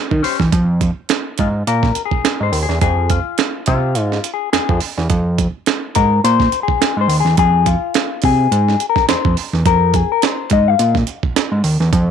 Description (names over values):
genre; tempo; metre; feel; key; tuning
funk; 105 BPM; 4/4; swing 56% on 16ths; F minor; A4 = 438 Hz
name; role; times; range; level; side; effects
mellow electric guitar; accompaniment; 0.1-11.0 s; Db4 to F5; -18 LUFS; left 13 dB; wah
fat analog bass; bass; 0.1-12.1 s; Eb2 to Eb3; -15 LUFS; right 1 dB; none
breakbeat sampler-style drum kit; drums; 0.1-12.1 s; hi-hat, kick drum, snare drum; -18 LUFS; right 6 dB; none
room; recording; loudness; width
light reverb, digital ambience; 1960s-style stereo with parts hard left and right; -14 LUFS; side -8 dB against mid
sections
0.5-12.1 A section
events
clean electric guitar solo 0.5-12.1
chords
0.0 Eb13; 0.5 Fm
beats
| 0.53 1.10 1.67 2.25 | 2.82 3.39 3.96 4.53 | 5.10 5.67 6.24 6.81 | 7.38 7.95 8.52 9.09 | 9.65 10.22 10.79 11.36 | 11.93